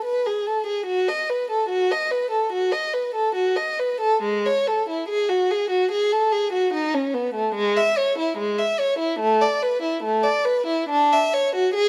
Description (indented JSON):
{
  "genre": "classical, baroque-style suite movement for unaccompanied violin",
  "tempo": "72 BPM",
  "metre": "4/4",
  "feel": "rubato",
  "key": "E major, A major from 7.6 s",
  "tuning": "A4 = 439 Hz",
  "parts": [
    { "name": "warm violin", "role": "solo", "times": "0.0-11.9 s", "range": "G#3 to E5", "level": "-22 LUFS", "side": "equal", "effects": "none" }
  ],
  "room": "moderate stone room reverb, RT60 1.2 s",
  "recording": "none",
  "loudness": "-22 LUFS",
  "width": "mono",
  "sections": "0.0-11.9 A section",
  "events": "none",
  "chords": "none"
}